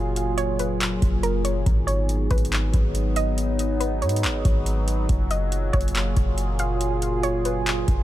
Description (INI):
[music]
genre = hip hop, atmospheric cloud-rap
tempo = 140 BPM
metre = 4/4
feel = half-time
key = F# major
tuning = A4 = 441 Hz
[part]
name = sweeping resonant pad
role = sustained chords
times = 0.0-8.0 s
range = A#2 to G#4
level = -27 LUFS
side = equal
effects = chorus, phaser, sidechain pumping
[part]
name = clean 808-style bass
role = bass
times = 0.0-8.0 s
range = F#1 to G#2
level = -24 LUFS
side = equal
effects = none
[part]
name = booming analog drum machine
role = drums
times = 0.2-8.0 s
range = handclaps, hi-hat, kick drum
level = -25 LUFS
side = equal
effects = none
[part]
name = soft round pluck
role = melody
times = 0.4-8.0 s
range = A#4 to E#5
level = -30 LUFS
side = right 1 dB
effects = chorus, ping-pong delay
[sound]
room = digital ambience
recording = none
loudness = -20 LUFS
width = side -14 dB against mid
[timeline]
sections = 0.0-8.0 A section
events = none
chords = 0.0 F#maj9; 1.7 G#m7; 5.1 F#maj9